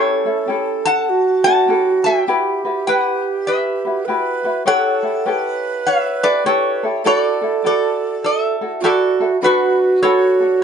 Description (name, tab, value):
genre	Hawaiian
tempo	101 BPM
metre	4/4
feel	swing 63% on 8ths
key	D major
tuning	A4 = 441 Hz
part	metal-body resonator slide guitar	melody	0.0-10.6 s	F#4 to A5	-18 LUFS	left 1 dB	none
part	breathy mellow tenor recorder	second line	0.0-10.6 s	F#4 to B4	-18 LUFS	right 4 dB	none
part	ukulele	accompaniment	0.0-10.6 s	C#4 to D5	-22 LUFS	left 4 dB	none
room	moderate small room reverb, RT60 0.6 s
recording	nothing above 10.8 kHz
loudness	-15 LUFS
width	side -7 dB against mid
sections	0.0-9.4 A section; 9.4-10.6 B section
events	none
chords	0.0 A7; 2.3 Emadd9; 4.7 A7; 7.0 Dadd9; 9.4 D6